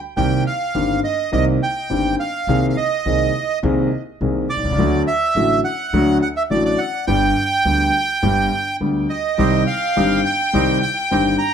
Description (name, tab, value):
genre	tango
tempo	104 BPM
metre	4/4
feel	rubato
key	C minor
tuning	A4 = 440 Hz
part	bandoneon	melody	0.2-11.5 s	D5 to Bb5	-20 LUFS	right 3 dB	tape echo
part	warm concert grand piano	accompaniment	0.2-11.4 s	G1 to Ab4	-19 LUFS	left 2 dB	none
part	upright bass	bass	0.2-11.4 s	G1 to D2	-24 LUFS	right 2 dB	none
part	warm violin	second line	9.4-11.5 s	G5	-23 LUFS	left 5 dB	none
part	bandoneon	stabs	9.4-11.4 s	C4 to G4	-25 LUFS	right 8 dB	none
room	moderate studio reverb, RT60 0.7 s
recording	none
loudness	-16 LUFS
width	side -8 dB against mid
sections	0.0-11.5 A section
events	none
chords	0.2 Cm7; 2.5 Abadd9/C; 4.8 D; 7.1 G; 9.4 Cm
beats	| 0.17 0.74 1.32 1.90 | 2.47 3.05 3.62 4.20 | 4.78 5.35 5.92 6.50 | 7.07 7.65 8.23 8.80 | 9.38 9.96 10.54 11.11